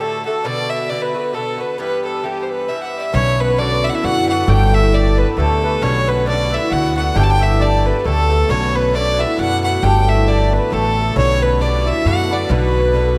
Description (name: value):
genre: celtic folk, Celtic waltz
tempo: 134 BPM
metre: 3/4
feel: swing 56% on 8ths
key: E minor, B minor from 3.1 s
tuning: A4 = 440 Hz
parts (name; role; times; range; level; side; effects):
- rich fiddle; melody; 0.0-13.2 s; G4 to A5; -22 LUFS; equal; analog delay
- accordion; second line; 0.0-13.2 s; G4 to G5; -28 LUFS; equal; light tremolo tuning
- Irish bouzouki; accompaniment; 0.0-13.2 s; G2 to G4; -25 LUFS; equal; none
- cimbalom; second line; 3.1-13.2 s; A3 to G4; -25 LUFS; equal; none
- upright bass; bass; 3.1-13.2 s; G1 to F#2; -20 LUFS; equal; none
room: moderate lush hall reverb, RT60 2.6 s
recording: dreamy mix soaked in reverb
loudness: -17 LUFS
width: mono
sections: 0.0-3.1 A section; 3.1-13.2 B section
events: none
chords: 0.4 Bm; 1.8 Em; 3.1 Bm; 4.5 Gsus2; 5.8 Bm; 7.2 Gsus2; 8.5 Bm; 9.8 Gsus2; 11.2 Bm